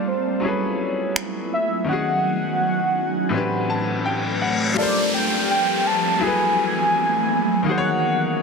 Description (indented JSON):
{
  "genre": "contemporary R&B",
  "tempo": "83 BPM",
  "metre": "4/4",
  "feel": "swing 54% on 16ths",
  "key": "unclear",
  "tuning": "A4 = 439 Hz",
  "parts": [
    { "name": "warm velvety synth lead", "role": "melody", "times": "0.0-8.4 s", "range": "C5 to A5", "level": "-23 LUFS", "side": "equal", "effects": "chorus, digital delay" },
    { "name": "bright concert grand piano", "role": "accompaniment", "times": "0.0-8.4 s", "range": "A2 to A5", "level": "-25 LUFS", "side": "left 4 dB", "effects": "none" },
    { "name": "ethereal airy pad", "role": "sustained chords", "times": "0.0-8.4 s", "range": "F#3 to A5", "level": "-24 LUFS", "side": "right 1 dB", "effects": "ensemble chorus, built-in reverb, phaser" },
    { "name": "electronic finger snaps", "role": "drums", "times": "1.2-1.3 s", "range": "none", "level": "-26 LUFS", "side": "equal", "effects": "soft clipping on snare" },
    { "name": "reverse cymbal and downlifter", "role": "sound effects", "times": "3.7-8.4 s", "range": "none", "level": "-26 LUFS", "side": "equal", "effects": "none" }
  ],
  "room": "moderate plate reverb, RT60 2.1 s",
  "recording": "dense, heavily limited modern master",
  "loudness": "-19 LUFS",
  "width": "side -4 dB against mid",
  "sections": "0.0-4.8 A section; 4.8-8.4 B section",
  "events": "grand piano fill 3.3-4.8; reverse cymbal 3.7-4.8",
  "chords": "0.4 F#m11; 1.9 Ebm7; 3.3 Am11; 4.8 Gm11; 6.2 F#m11; 7.7 Ebm7"
}